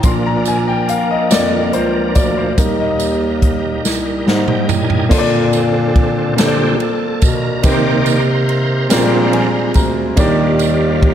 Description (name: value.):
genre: slow gospel.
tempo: 47 BPM (dotted quarters).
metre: 6/8.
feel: straight.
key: Bb major from 5.1 s.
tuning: A4 = 443 Hz.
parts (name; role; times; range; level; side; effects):
warm concert grand piano; accompaniment; 0.0-11.1 s; Bb2 to C6; -17 LUFS; left 1 dB; none.
bright tonewheel organ; sustained chords; 0.0-11.1 s; D3 to Ab5; -20 LUFS; right 2 dB; fast rotary speaker, overdrive, chorus vibrato.
warm bass clarinet; bass; 0.0-11.1 s; C2 to C3; -19 LUFS; equal; none.
swinging big-band drum kit; drums; 0.0-11.1 s; crash cymbal, hi-hat, kick drum, ride cymbal, snare drum, toms; -17 LUFS; equal; none.
tambourine; percussion; 0.0-11.0 s; none; -28 LUFS; right 9 dB; none.
room: light reverb.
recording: none.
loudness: -12 LUFS.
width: side -10 dB against mid.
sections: 0.0-5.1 A section; 5.1-11.1 B section.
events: grand piano solo 0.0-5.1; drum fill 3.8-5.1; tonewheel organ fill 3.8-5.1; tonewheel organ solo 5.1-11.1; grand piano fill 8.9-10.2.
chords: 0.0 Bb; 2.6 Eb; 5.1 Bbmaj7; 7.6 Cm7; 8.9 Bb13; 10.2 Ebmaj7.